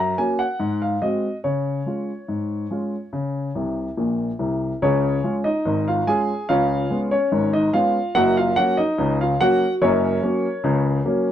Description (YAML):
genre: ragtime piano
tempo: 72 BPM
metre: 2/4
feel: straight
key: Db major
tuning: A4 = 442 Hz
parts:
  - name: warm upright piano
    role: solo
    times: 0.0-11.3 s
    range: Gb1 to Bb5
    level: -19 LUFS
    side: equal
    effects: none
room: moderate studio reverb, RT60 0.6 s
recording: dark, warm production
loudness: -19 LUFS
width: side -10 dB against mid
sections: 0.0-4.8 A section; 4.8-11.3 A section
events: upright piano fill 3.6-4.8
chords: 0.0 Gb; 0.6 Ab7; 1.5 Db; 6.5 Db7; 8.1 Gb